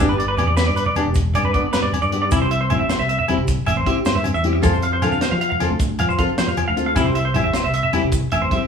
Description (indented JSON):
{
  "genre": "highlife guitar band",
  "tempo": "103 BPM (dotted quarters)",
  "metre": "12/8",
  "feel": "straight",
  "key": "C major",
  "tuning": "A4 = 440 Hz",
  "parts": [
    { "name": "nylon-string guitar", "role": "accompaniment", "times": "0.0-8.6 s", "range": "F3 to A4", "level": "-23 LUFS", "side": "left 4 dB", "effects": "none" },
    { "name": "semi-hollow electric guitar", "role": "arpeggios", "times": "0.0-8.6 s", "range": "D4 to F5", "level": "-21 LUFS", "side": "right 2 dB", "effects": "none" },
    { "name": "fingered electric bass", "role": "bass", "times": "0.0-8.5 s", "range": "E1 to F3", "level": "-23 LUFS", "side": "equal", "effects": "none" },
    { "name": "tight funk drum kit", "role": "drums", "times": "0.0-8.6 s", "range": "hi-hat, kick drum, snare drum", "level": "-24 LUFS", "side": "equal", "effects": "none" },
    { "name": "agogo bells", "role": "percussion", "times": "0.0-8.5 s", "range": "none", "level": "-30 LUFS", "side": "left 6 dB", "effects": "none" },
    { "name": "congas", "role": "percussion", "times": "0.2-8.7 s", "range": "none", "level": "-26 LUFS", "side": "right 2 dB", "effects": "none" },
    { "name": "maracas", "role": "percussion", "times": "0.6-8.2 s", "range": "none", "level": "-37 LUFS", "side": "right 6 dB", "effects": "none" }
  ],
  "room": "moderate stone room reverb, RT60 1.0 s",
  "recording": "band playing live in one room, small room ambience",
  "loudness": "-16 LUFS",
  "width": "side -6 dB against mid",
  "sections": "0.0-8.7 A section",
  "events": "none",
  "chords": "0.0 G; 2.3 C; 4.6 F; 7.0 C"
}